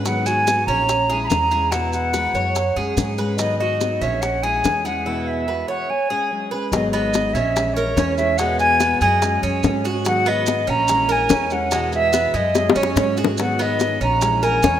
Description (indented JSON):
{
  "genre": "latin, Cuban son and guajira",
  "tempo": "144 BPM",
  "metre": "4/4",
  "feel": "straight",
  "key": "G# minor",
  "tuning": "A4 = 438 Hz",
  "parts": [
    { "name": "fingerpicked steel-string acoustic guitar", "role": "accompaniment", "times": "0.0-14.8 s", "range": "B2 to G#4", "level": "-28 LUFS", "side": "left 2 dB", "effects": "none" },
    { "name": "Cuban tres", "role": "arpeggios", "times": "0.0-14.8 s", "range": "G#3 to C#5", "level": "-25 LUFS", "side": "right 5 dB", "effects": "none" },
    { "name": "upright bass", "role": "bass", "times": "0.0-14.8 s", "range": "G#1 to G#2", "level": "-25 LUFS", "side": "equal", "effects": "none" },
    { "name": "silver concert flute", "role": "melody", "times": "0.1-14.8 s", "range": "C#5 to B5", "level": "-20 LUFS", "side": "equal", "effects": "none" },
    { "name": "bongos", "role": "percussion", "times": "0.1-14.8 s", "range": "none", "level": "-24 LUFS", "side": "left 5 dB", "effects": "none" },
    { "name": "maracas", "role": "percussion", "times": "0.1-14.8 s", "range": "none", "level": "-33 LUFS", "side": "right 6 dB", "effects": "none" }
  ],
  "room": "moderate lush hall reverb, RT60 2.8 s",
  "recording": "rough home demo mix",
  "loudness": "-17 LUFS",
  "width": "side -10 dB against mid",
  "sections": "0.0-6.7 A section; 6.7-14.8 B section",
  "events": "break 5.1-6.7; drum fill 12.6-13.4",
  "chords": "0.1 G#m7; 0.9 A#m7b5; 1.7 Eadd9; 2.6 F#sus2; 3.4 G#m7; 4.2 A#m7b5; 5.1 Eadd9; 5.9 F#sus2; 6.7 G#m7; 7.6 A#m7b5; 8.4 Eadd9; 9.2 F#sus2; 10.1 G#m7; 10.9 A#m7b5; 11.7 Eadd9; 12.6 F#sus2; 13.4 G#m7; 14.2 A#m7b5",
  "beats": "| 0.05 0.47 0.89 1.30 | 1.72 2.14 2.55 2.97 | 3.39 3.81 4.22 4.64 | 5.06 5.47 5.89 6.31 | 6.72 7.14 7.56 7.97 | 8.39 8.81 9.22 9.64 | 10.05 10.47 10.89 11.30 | 11.72 12.13 12.55 12.97 | 13.38 13.80 14.22 14.63"
}